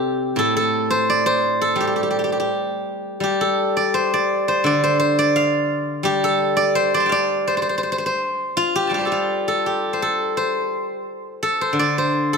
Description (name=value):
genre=chinese traditional, Chinese solo plucked strings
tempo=85 BPM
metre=2/4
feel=rubato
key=C zhi mode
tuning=A4 = 439 Hz
part: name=steel-string zither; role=solo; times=0.0-12.4 s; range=A2 to C6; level=-18 LUFS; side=equal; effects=none
room=moderate recital hall reverb, RT60 1.8 s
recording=none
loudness=-18 LUFS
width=side -5 dB against mid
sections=0.0-8.9 A section; 8.9-12.4 B section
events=none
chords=none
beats=| 0.38 1.07 | 1.78 2.50 | 3.23 3.95 | 4.66 5.36 | 6.05 6.75 | 7.46 8.19 | 8.92 9.65 | 10.35 11.04 | 11.75